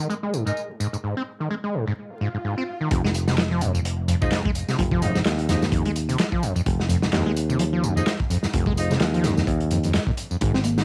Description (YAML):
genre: breakbeat, breaks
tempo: 128 BPM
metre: 4/4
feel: swing 57% on 16ths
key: F minor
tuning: A4 = 440 Hz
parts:
  - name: deep dark ambient pad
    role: sustained chords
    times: 0.0-1.0 s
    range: Ab3 to Bb4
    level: -52 LUFS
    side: equal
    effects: none
  - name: screaming distorted acid line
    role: riff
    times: 0.0-10.8 s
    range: F2 to C4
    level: -27 LUFS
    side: equal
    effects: distortion, chorus, cassette tape, analog delay
  - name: electronic tambourine and handclaps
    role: drums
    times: 0.0-10.8 s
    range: none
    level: -37 LUFS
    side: equal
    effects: cassette tape
  - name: mellow horn section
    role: stabs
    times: 0.5-0.6, 4.2-8.9 s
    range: Eb4 to Eb5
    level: -34 LUFS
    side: equal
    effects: cassette tape, analog delay
  - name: swell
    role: sound effects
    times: 2.1-2.9 s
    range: none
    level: -37 LUFS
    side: equal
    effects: none
  - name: picked electric bass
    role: bass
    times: 2.9-10.8 s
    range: F1 to Eb2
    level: -27 LUFS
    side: equal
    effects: none
  - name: crunchy breakbeat drum kit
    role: drums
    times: 2.9-10.8 s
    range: hi-hat, kick drum, snare drum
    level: -27 LUFS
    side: equal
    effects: cassette tape
  - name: congas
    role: percussion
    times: 10.6-10.8 s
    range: none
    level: -26 LUFS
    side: equal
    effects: none
room: light reverb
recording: home recording on cassette, vinyl crackle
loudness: -23 LUFS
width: mono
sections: 0.0-2.9 A section; 2.9-10.8 B section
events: filter sweep on acid bass 0.0-2.9; swell 2.1-2.9; drop 2.9-10.8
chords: 0.0 Absus2; 2.9 Fm7